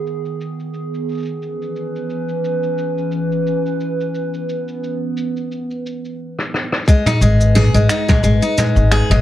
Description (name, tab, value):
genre	folktronica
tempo	88 BPM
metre	4/4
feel	swing 56% on 16ths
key	G# minor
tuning	A4 = 444 Hz
part	warbly tape-like pad	sustained chords	0.0-9.2 s	D#3 to B4	-22 LUFS	right 1 dB	chorus, built-in reverb
part	vintage brush drum kit	drums	0.1-9.2 s	cabasa, finger snaps, rim click, toms	-19 LUFS	equal	low-pass filter on toms, low-pass filter on snare, low-pass filter on perc, low-pass filter on room
part	picked steel-string acoustic guitar	arpeggios	6.9-9.2 s	G#3 to G#4	-17 LUFS	left 1 dB	tape echo, plate reverb
part	electronic kick drum	drums	6.9-8.2 s	none	-12 LUFS	left 1 dB	none
part	upright bass	bass	7.2-9.2 s	G#1	-13 LUFS	left 1 dB	tube saturation
room	light reverb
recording	dark, warm production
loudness	-16 LUFS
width	side -13 dB against mid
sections	0.0-6.9 A section; 6.9-9.2 B section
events	drum fill 6.4-6.9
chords	0.0 G#m; 1.4 C#m7; 6.9 G#m